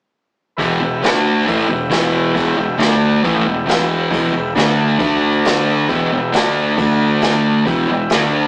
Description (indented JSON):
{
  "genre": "garage rock duo or trio",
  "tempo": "136 BPM",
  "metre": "4/4",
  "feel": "straight",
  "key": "E minor",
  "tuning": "A4 = 445 Hz",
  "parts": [
    { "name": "combo organ", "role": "sustained chords", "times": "0.6-8.5 s", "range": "A4 to A5", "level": "-25 LUFS", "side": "equal", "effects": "none" },
    { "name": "fuzz guitar", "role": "riff", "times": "0.6-8.5 s", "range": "E2 to D4", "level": "-17 LUFS", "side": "equal", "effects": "distortion" },
    { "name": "fuzz picked electric bass", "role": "bass", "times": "0.6-8.5 s", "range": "E1 to D2", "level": "-29 LUFS", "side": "equal", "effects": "overdrive" },
    { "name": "jazz brush drum kit", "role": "drums", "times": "0.6-8.2 s", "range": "crash cymbal, kick drum, snare drum", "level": "-24 LUFS", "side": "equal", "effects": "none" }
  ],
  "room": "moderate stone room reverb, RT60 1.0 s",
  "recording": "rough rehearsal-room recording, tube saturation, small speaker sound",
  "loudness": "-16 LUFS",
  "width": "mono",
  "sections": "0.6-8.5 A section",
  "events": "none",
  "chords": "0.6 Em; 1.0 D5; 1.5 Em; 2.8 D5; 3.2 Em; 4.6 D5; 5.9 Em; 6.3 D5; 7.7 Em"
}